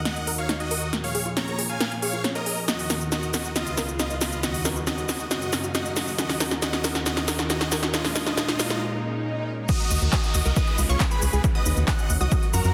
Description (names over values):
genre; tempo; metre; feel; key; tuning
uplifting trance; 137 BPM; 4/4; straight; Eb minor; A4 = 438 Hz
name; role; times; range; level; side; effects
lush unison pad; sustained chords; 0.0-12.7 s; Db2 to F5; -34 LUFS; equal; chorus, sidechain pumping
big supersaw lead; melody; 0.1-12.7 s; F4 to Bb5; -33 LUFS; equal; sidechain pumping, dub echo
tight sequenced synth; arpeggios; 0.1-12.6 s; Db4 to Eb5; -37 LUFS; equal; chorus, sidechain pumping, dub echo
big-room dance drum kit; drums; 0.1-12.7 s; crash cymbal, handclaps, hi-hat, shaker, snare drum; -29 LUFS; equal; overdrive
riser, swell and downlifter; sound effects; 5.2-12.7 s; none; -38 LUFS; equal; none
analog pluck; second line; 9.7-12.7 s; Bb5 to F#6; -36 LUFS; equal; chorus, sidechain pumping, dub echo
electronic kick drum; drums; 9.7-12.4 s; none; -26 LUFS; equal; overdrive
tight sequencer bass; bass; 9.9-12.7 s; Db2 to Gb2; -24 LUFS; equal; sidechain pumping
room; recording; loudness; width
wet digital room reverb, RT60 1.2 s, digital ambience; dense, heavily limited modern master; -25 LUFS; mono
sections
0.0-9.7 A section; 9.7-12.7 B section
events
build-up 0.0-9.7; drum fill 0.0-8.8; break 8.8-9.7; swell 8.8-9.7; drop 9.7-12.7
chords
0.0 Ebm; 0.9 Bbm7; 2.7 Ebm; 3.6 Db7; 4.4 Badd9/D#; 5.3 Gbmaj7; 6.2 Ebm; 7.9 Bbm7; 9.7 Ebm; 10.6 Db7; 11.4 Badd9/D#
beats
0.05 0.49 | 0.93 1.37 1.80 2.24 | 2.68 3.12 3.56 4.00 | 4.43 4.87 5.31 5.75 | 6.18 6.62 7.06 7.50 | 7.94 8.38 8.81 9.25 | 9.69 10.13 10.56 11.00 | 11.44 11.88 12.32